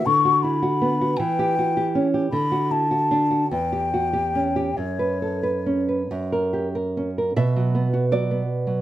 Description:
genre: romantic duo for flute and classical guitar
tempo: 44-55 BPM (dotted quarters)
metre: 6/8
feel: rubato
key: B minor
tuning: A4 = 442 Hz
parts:
  - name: mellow hollow concert flute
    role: melody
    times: 0.0-6.1 s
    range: C#5 to C#6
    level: -22 LUFS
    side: left 3 dB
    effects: none
  - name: nylon-string guitar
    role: accompaniment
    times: 0.0-8.8 s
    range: E2 to E5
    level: -22 LUFS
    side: right 2 dB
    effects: none
room: light reverb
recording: none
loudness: -20 LUFS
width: side -13 dB against mid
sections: 0.0-7.4 A section; 7.4-8.8 B section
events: none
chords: 0.1 Bm/D; 1.2 C#dim/E; 2.3 D69; 3.5 C#dim/E; 4.8 F#sus4; 6.1 F#; 7.4 Bm

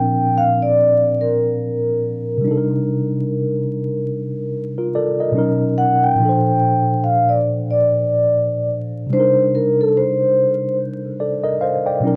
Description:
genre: hip hop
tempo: 72 BPM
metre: 4/4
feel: swing 59% on 16ths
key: Bb major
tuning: A4 = 440 Hz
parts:
  - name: vibraphone with soft mallets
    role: melody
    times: 0.0-10.8 s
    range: A4 to G5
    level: -20 LUFS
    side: equal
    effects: none
  - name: mellow tine electric piano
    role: accompaniment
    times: 0.0-12.2 s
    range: Bb2 to G5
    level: -22 LUFS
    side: equal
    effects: cassette tape
room: moderate small room reverb, RT60 0.5 s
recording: vinyl crackle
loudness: -18 LUFS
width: mono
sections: 0.0-6.2 A section; 6.2-12.2 A section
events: none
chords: 0.0 Bbadd9; 2.4 Cm9; 5.4 Bmaj9; 6.2 Bbmaj9; 9.1 Cm9

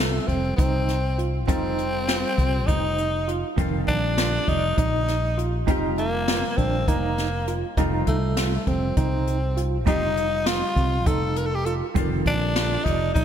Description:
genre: progressive instrumental, band music in an uneven meter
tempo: 200 BPM (eighths)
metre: 7/8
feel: straight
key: F mixolydian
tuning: A4 = 442 Hz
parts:
  - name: growling tenor saxophone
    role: melody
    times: 0.0-13.2 s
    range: A3 to Bb4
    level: -26 LUFS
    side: left 1 dB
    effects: slapback echo, digital delay
  - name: hollow-body jazz guitar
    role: accompaniment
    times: 0.0-13.2 s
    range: G3 to A4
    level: -31 LUFS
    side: equal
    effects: double-tracked left and right
  - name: overdriven tine electric piano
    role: arpeggios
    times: 0.0-13.2 s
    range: Eb3 to D5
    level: -30 LUFS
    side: right 5 dB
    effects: fast tremolo
  - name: fingered electric bass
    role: bass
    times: 0.0-13.2 s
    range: F1 to C2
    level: -26 LUFS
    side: equal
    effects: none
  - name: jazz brush drum kit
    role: drums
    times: 0.3-13.2 s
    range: hi-hat, kick drum, snare drum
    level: -26 LUFS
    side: left 1 dB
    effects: none
room: moderate lush hall reverb, RT60 2.2 s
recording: big arena sound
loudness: -21 LUFS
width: side -9 dB against mid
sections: 0.0-13.2 A section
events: none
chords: 0.0 F7; 3.6 Ebsus2/F; 7.8 F7; 12.0 Ebsus2/F

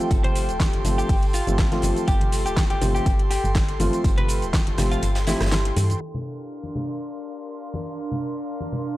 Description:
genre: deep house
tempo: 122 BPM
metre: 4/4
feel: swing 54% on 16ths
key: unclear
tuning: A4 = 440 Hz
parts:
  - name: airy breathy pad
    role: sustained chords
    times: 0.0-9.0 s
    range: D4 to C6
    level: -34 LUFS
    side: equal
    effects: chorus, sidechain pumping
  - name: felt-muted upright piano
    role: stabs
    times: 0.0-5.4 s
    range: F3 to G4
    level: -28 LUFS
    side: equal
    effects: sidechain pumping, tape echo
  - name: deep house drum kit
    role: drums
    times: 0.0-6.0 s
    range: hi-hat, rim click, shaker, snare drum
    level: -30 LUFS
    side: equal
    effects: overdrive, low-pass filter on hats, low-pass filter on perc, low-pass filter on snare
  - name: warbly tape-like pad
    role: texture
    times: 0.0-9.0 s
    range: D4 to C6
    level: -32 LUFS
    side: equal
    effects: chorus, built-in reverb, sidechain pumping
  - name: woody FM bass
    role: bass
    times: 0.1-5.9 s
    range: D1 to G2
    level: -24 LUFS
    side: equal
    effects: sidechain pumping
  - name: big rock drum kit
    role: drums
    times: 0.1-5.9 s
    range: hi-hat, snare drum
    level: -38 LUFS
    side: right 2 dB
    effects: high-pass filter on hats, high-pass filter on snare, high-pass filter on room
  - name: electronic kick drum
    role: drums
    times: 0.1-4.6 s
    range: none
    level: -22 LUFS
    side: equal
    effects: overdrive
  - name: hollow-body jazz guitar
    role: melody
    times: 0.2-5.9 s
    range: E4 to C5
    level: -31 LUFS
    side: equal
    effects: analog delay
  - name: congas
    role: percussion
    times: 0.2-8.8 s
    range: none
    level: -32 LUFS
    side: left 2 dB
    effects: sidechain pumping on perc
room: light reverb, studio reverb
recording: dry, gritty hardware recording, transformer saturation, cassette tape, low-pass filter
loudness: -20 LUFS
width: side -16 dB against mid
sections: 0.0-6.0 A section; 6.0-9.0 B section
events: kick drops out 5.0-6.0; filter sweep 6.0-9.0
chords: 0.0 G9sus4; 6.0 C9sus4

